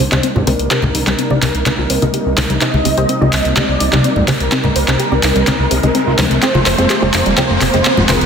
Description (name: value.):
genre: progressive house.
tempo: 126 BPM.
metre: 4/4.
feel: straight.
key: C minor.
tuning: A4 = 445 Hz.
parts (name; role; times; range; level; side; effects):
wide unison lead; melody; 0.0-8.3 s; Bb4 to Eb5; -20 LUFS; right 1 dB; ensemble chorus, dub echo.
lush unison pad; sustained chords; 0.0-8.3 s; C3 to Eb4; -22 LUFS; right 1 dB; chorus.
tight sequenced synth; arpeggios; 0.0-8.1 s; C3 to C5; -21 LUFS; equal; chorus, phaser, ping-pong delay.
fat analog bass; bass; 0.0-8.3 s; F1 to D2; -19 LUFS; equal; none.
riser; sound effects; 1.6-8.3 s; none; -23 LUFS; right 1 dB; none.
wide unison pluck; stabs; 0.1-8.3 s; C3 to Eb5; -21 LUFS; equal; none.
house drum kit; drums; 0.1-8.3 s; handclaps, hi-hat; -18 LUFS; equal; small room reverb.
congas; percussion; 0.1-8.2 s; none; -20 LUFS; left 2 dB; none.
room: moderate lush hall reverb, RT60 1.8 s, digital ambience.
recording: dense, heavily limited modern master.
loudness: -11 LUFS.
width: side -7 dB against mid.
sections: 0.0-8.3 A section.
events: build-up 0.0-8.3; drum fill 0.0-8.3; filter sweep on synth arpeggio sound 0.0-8.3; filter sweep on synth pluck 0.0-8.3; filter sweep on analog synth lead 0.0-8.3; riser 1.6-8.3.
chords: 0.0 Cm7; 6.4 Fm.